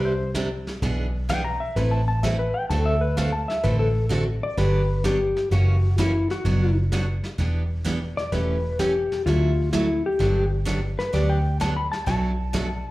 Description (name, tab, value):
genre	country, western swing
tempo	128 BPM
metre	4/4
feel	swing 69% on 8ths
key	G major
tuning	A4 = 440 Hz
part	clean lap steel guitar	second line	0.0-12.9 s	E4 to B5	-26 LUFS	left 2 dB	none
part	picked steel-string acoustic guitar	accompaniment	0.0-12.7 s	B2 to B4	-28 LUFS	right 2 dB	slapback echo
part	vintage muted picked electric bass	bass	0.0-12.8 s	E1 to D2	-23 LUFS	equal	none
part	vintage brush drum kit	drums	0.3-12.9 s	brushed snare drum, hi-hat, kick drum, snare drum	-34 LUFS	equal	none
room	light reverb, small room ambience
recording	live gig heard through the venue's PA, club reverb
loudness	-21 LUFS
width	side -18 dB against mid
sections	0.0-12.9 A section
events	electric slide guitar solo 0.0-12.9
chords	0.0 Csus2; 0.8 E7/B; 1.8 Amadd9; 2.7 D7; 4.6 Gmaj7; 5.5 F#7; 6.5 Bm/F#; 7.4 Em7; 8.3 A7/E; 9.3 Dadd9; 10.2 Gmaj7; 12.1 Bm7